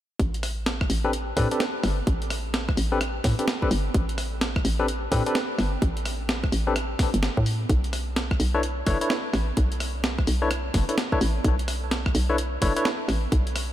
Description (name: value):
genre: UK garage, two-step garage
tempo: 128 BPM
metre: 4/4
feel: swing 63% on 16ths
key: A dorian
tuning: A4 = 440 Hz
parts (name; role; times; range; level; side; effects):
- hollow knocking FM bass; bass; 0.2-13.7 s; F#1 to A2; -26 LUFS; equal; none
- breakbeat sampler-style drum kit; drums; 0.2-13.7 s; hi-hat, rim click, snare drum; -29 LUFS; equal; none
- electronic kick drum; drums; 0.2-13.4 s; none; -26 LUFS; equal; none
- barky tine electric piano; stabs; 1.0-12.9 s; C4 to C#5; -28 LUFS; left 2 dB; medium stereo tremolo, ping-pong delay
room: light reverb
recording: none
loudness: -22 LUFS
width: side -12 dB against mid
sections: 0.2-13.7 A section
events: none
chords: 0.2 A7(no3); 7.7 B7(no3)